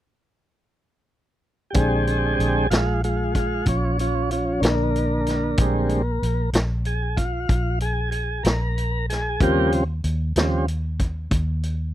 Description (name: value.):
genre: slow blues.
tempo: 63 BPM (dotted quarters).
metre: 12/8.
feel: straight.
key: Bb mixolydian.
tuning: A4 = 443 Hz.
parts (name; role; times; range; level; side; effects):
tonewheel organ; sustained chords; 1.7-10.7 s; Db3 to Bb4; -23 LUFS; equal; slow rotary speaker.
vintage muted fingered electric bass; bass; 1.7-11.9 s; Bb1 to Eb2; -24 LUFS; equal; none.
vintage drum kit; drums; 1.7-11.8 s; hi-hat, kick drum, snare drum; -23 LUFS; equal; none.
room: little or no reverb.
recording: dry, close 1970s-style studio recording.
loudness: -20 LUFS.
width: side -13 dB against mid.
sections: 1.8-11.9 A section.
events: tonewheel organ solo 1.8-11.9.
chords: 1.8 Bb13; 9.4 Eb13.